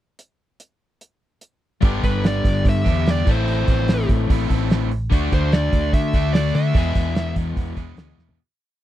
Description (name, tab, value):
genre	classic rock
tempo	146 BPM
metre	4/4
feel	straight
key	unclear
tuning	A4 = 440 Hz
part	cloth-damped thuddy drum kit	drums	0.2-8.4 s	hi-hat, kick drum, snare drum, toms	-19 LUFS	right 1 dB	none
part	crunchy overdriven guitar	riff	1.8-8.4 s	E2 to A4	-25 LUFS	left 11 dB	none
part	overdriven semi-hollow guitar	riff	1.8-8.4 s	E2 to A4	-29 LUFS	right 12 dB	none
part	hollow-body short-scale fingered electric bass	bass	1.8-8.4 s	G1 to D3	-22 LUFS	right 1 dB	none
part	fuzz lead guitar	melody	2.0-7.3 s	B4 to E5	-26 LUFS	right 2 dB	distortion
room	little or no reverb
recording	dry, close 1970s-style studio recording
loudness	-17 LUFS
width	side -13 dB against mid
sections	0.2-1.8 pickup bar; 1.8-8.4 pre-chorus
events	fade-out 6.8-8.4; drum fill 8.2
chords	0.2 N.C.; 1.8 G; 3.3 Am; 5.1 D; 6.8 E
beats	| 0.19 0.60 1.01 1.42 | 1.83 2.24 2.65 3.06 | 3.47 3.88 4.29 4.70 | 5.12 5.53 5.93 6.34 | 6.75 7.16 7.57 7.98